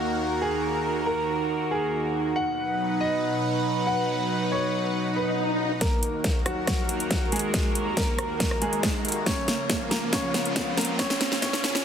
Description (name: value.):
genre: heavy wobble dubstep.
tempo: 139 BPM.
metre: 4/4.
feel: half-time.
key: Eb minor.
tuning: A4 = 439 Hz.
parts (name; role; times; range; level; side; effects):
warm concert grand piano; melody; 0.0-11.8 s; Gb3 to F#5; -30 LUFS; equal; tape echo.
supersaw pad; sustained chords; 0.0-11.8 s; Db2 to F#5; -30 LUFS; equal; phaser, sidechain pumping.
warbly tape-like pad; texture; 0.0-11.8 s; Db4 to B5; -31 LUFS; right 2 dB; chorus, built-in reverb, sidechain pumping.
swell and riser; sound effects; 5.1-11.8 s; none; -33 LUFS; equal; none.
dubstep drum kit; drums; 5.8-11.8 s; hi-hat, rim click, snare drum; -27 LUFS; equal; none.
electronic kick drum; drums; 5.8-11.5 s; none; -28 LUFS; equal; distortion.
room: moderate lush hall reverb, RT60 2.2 s.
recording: heavily compressed radio sound, multiband compression, high-pass filter.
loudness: -23 LUFS.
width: side -8 dB against mid.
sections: 0.0-5.8 A section; 5.8-11.8 B section.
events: swell 5.1-5.8; build-up 5.8-11.8; drum fill 5.8-11.8; riser 5.8-11.8; filter sweep 5.8-11.8.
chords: 0.0 Ebm; 2.4 B; 5.8 Ebm; 9.3 Bbm/Db.